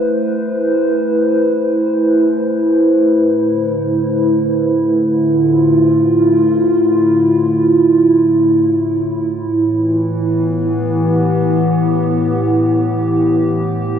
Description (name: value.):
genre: ambient.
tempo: free time.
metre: none.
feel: none.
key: unclear.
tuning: A4 = 438 Hz.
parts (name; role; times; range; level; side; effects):
warbly tape-like pad; solo; 0.0-14.0 s; A2 to C5; -12 LUFS; equal; chorus, built-in reverb, diffuse ambient delay.
room: wet huge ambient reverb, RT60 7.5 s.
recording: in a vast, echoing space.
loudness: -12 LUFS.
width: side -8 dB against mid.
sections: 0.0-14.0 A section.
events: none.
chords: 0.0 Am; 3.1 Dm7/A; 9.1 Em/A.